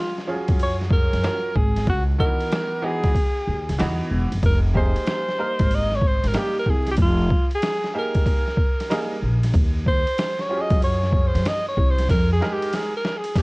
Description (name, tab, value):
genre	hip hop, jazz-hop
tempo	94 BPM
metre	4/4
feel	swing 65% on 16ths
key	F phrygian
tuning	A4 = 440 Hz
part	breathy alto saxophone	melody	0.0-13.4 s	F4 to Eb5	-25 LUFS	equal	none
part	boom bap sampler-style drum kit	drums	0.2-13.4 s	hi-hat, kick drum, ride cymbal, snare drum	-22 LUFS	equal	overdrive
part	bright upright piano	accompaniment	0.3-12.9 s	Eb3 to Bb4	-28 LUFS	right 1 dB	none
part	upright bass	bass	0.5-12.4 s	Fb1 to Gb2	-22 LUFS	equal	none
room	studio reverb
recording	worn, warbling old tape, cassette tape, vinyl crackle, warbly pitch drift, nothing above 10.6 kHz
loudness	-19 LUFS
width	side -26 dB against mid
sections	0.0-13.4 A section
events	alto saxophone solo 0.0-13.4; drum fill 12.1-13.4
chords	0.0 Ebm11 (rootless); 1.9 Dbm11; 4.4 Fm11; 9.5 Ebm11; 12.1 Fm11